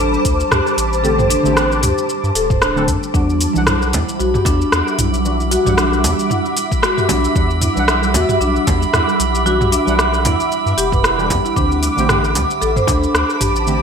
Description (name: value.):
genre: organic downtempo.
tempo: 114 BPM.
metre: 4/4.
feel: swing 56% on 16ths.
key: E minor.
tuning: A4 = 440 Hz.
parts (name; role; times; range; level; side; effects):
deep mellow chord stab; accompaniment; 0.0-13.8 s; D3 to F#5; -23 LUFS; right 2 dB; chorus, cassette tape, sidechain pumping, digital delay.
granular cloud pad; sustained chords; 0.0-13.8 s; G3 to D6; -20 LUFS; right 1 dB; built-in reverb, ensemble chorus, sidechain pumping.
marimba with soft mallets; arpeggios; 0.0-13.5 s; D4 to C5; -20 LUFS; left 2 dB; digital delay.
round analog bass; bass; 0.0-13.8 s; D1 to G2; -20 LUFS; equal; none.
deep house drum kit; drums; 0.1-13.8 s; hi-hat, rim click, shaker, toms; -19 LUFS; equal; gated reverb.
electronic kick drum; drums; 0.2-13.0 s; none; -19 LUFS; equal; none.
drifting glass-harmonics texture; texture; 3.8-13.8 s; B5; -24 LUFS; right 6 dB; chorus, built-in reverb.
frame drum; percussion; 3.9-13.0 s; none; -25 LUFS; right 2 dB; none.
room: moderate plate reverb, RT60 1.7 s.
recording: bright 1980s-style digital production.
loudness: -13 LUFS.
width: side -6 dB against mid.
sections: 0.0-13.8 A section.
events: none.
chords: 0.0 D7sus4; 3.1 Em9; 11.6 D7sus4.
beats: 0.51 | 1.04 1.56 2.09 2.62 | 3.14 3.67 4.20 4.72 | 5.25 5.78 6.30 6.83 | 7.35 7.88 8.41 8.93 | 9.46 9.98 10.51 11.04 | 11.56 12.09 12.62 13.14 | 13.67.